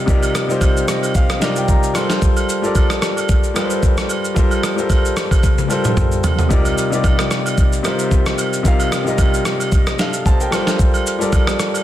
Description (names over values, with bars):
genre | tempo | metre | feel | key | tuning
amapiano | 112 BPM | 4/4 | swing 55% on 16ths | C dorian | A4 = 438 Hz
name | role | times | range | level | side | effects
clear concert grand piano | accompaniment | 0.0-11.8 s | C3 to C6 | -19 LUFS | left 1 dB | none
dusty soul sampler-style drum kit | drums | 0.1-11.8 s | kick drum, rim click, shaker, snare drum, toms | -16 LUFS | equal | soft clipping on snare
agogo bells | percussion | 0.2-11.8 s | none | -27 LUFS | right 6 dB | none
room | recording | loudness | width
digital ambience | dense, heavily limited modern master | -14 LUFS | side -12 dB against mid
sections
0.0-11.8 A section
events
grand piano fill 0.6-2.2; drum fill 5.4-6.5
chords
0.0 Cm11; 2.0 Gm11; 6.5 Cm11; 10.5 Gm11